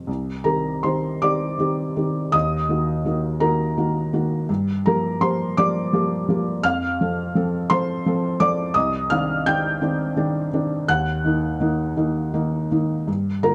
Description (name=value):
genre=neoclassical minimalist piano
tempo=52-58 BPM (dotted quarters)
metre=6/8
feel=rubato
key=C dorian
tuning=A4 = 440 Hz
part: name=felt-muted upright piano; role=solo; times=0.0-13.5 s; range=C2 to G6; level=-22 LUFS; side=equal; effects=none
room=light reverb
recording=dark, warm production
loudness=-22 LUFS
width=mono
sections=0.1-13.5 A section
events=none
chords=0.1 Cmadd9; 2.3 Ebm; 4.5 Gm7; 6.6 F; 8.7 Cmadd9; 10.9 Ebm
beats=| 0.08 1.23 | 2.34 3.43 | 4.49 5.56 | 6.63 7.69 | 8.74 9.81 | 10.87 11.96 | 13.07